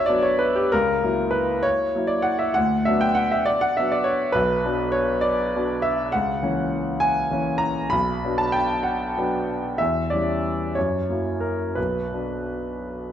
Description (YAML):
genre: classical, romantic character piece for solo piano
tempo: 57-69 BPM (dotted quarters)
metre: 6/8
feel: rubato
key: B minor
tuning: A4 = 441 Hz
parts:
  - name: clear grand piano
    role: solo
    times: 0.0-13.1 s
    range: B1 to B5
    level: -20 LUFS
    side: equal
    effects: none
room: wet recital hall reverb, RT60 1.5 s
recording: dark, warm production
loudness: -20 LUFS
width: side -10 dB against mid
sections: 0.0-13.1 A section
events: none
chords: 0.0 Bm; 0.7 F#7/C#; 2.6 Bm/D; 4.3 Bm; 6.1 A#dim/C#; 7.9 Bm; 9.8 C#dim/E; 10.8 F#7; 11.8 Bm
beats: | 0.72 1.64 | 2.56 3.46 | 4.35 5.24 | 6.13 7.02 | 7.92 8.86 | 9.79 10.76 | 11.77 12.79